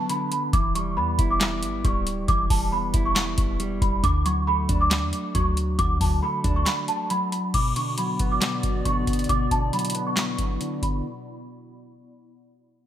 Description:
hip hop, trap; 137 BPM; 4/4; half-time; B minor; A4 = 440 Hz
small celesta; melody; 0.0-11.0 s; A5 to D6; -26 LUFS; right 1 dB; ensemble chorus, low-pass filter
mellow electric guitar; accompaniment; 0.0-11.0 s; B2 to E4; -29 LUFS; equal; low-pass filter
booming analog drum machine; drums; 0.1-11.0 s; crash cymbal, handclaps, hi-hat, kick drum, snare drum; -25 LUFS; equal
clean 808-style bass; bass; 0.5-6.7 s; D1 to E2; -26 LUFS; equal
warbly tape-like pad; sustained chords; 7.8-11.0 s; B2 to D5; -33 LUFS; left 2 dB; chorus, built-in reverb, low-pass filter
light reverb; bright 1980s-style digital production; -21 LUFS; side -11 dB against mid
0.0-7.5 A section; 7.5-11.0 B section
break 0.0-0.5, 6.7-7.5; filter sweep 7.5-11.0
0.0 Bm; 0.5 Em; 4.0 D; 7.5 Bm

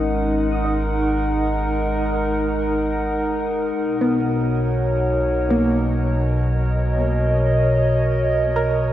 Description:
ambient; free time; A4 = 440 Hz
warbly tape-like pad; sustained chords; 0.0-8.9 s; Cb3 to Gb5; -19 LUFS; equal; chorus, built-in reverb, shimmer reverb
soft round pluck; arpeggios; 0.0-8.9 s; Bb3 to Eb6; -26 LUFS; right 1 dB; wide subtle chorus, diffuse ambient delay, shimmer reverb
round analog bass; bass; 0.0-8.9 s; Ab1 to Cb2; -25 LUFS; equal
wet lush hall reverb, RT60 2.8 s; dreamy mix soaked in reverb, nothing above 10.7 kHz; -18 LUFS; side -12 dB against mid
0.0-8.9 A section
0.0 Absus2; 3.8 Cbmaj7

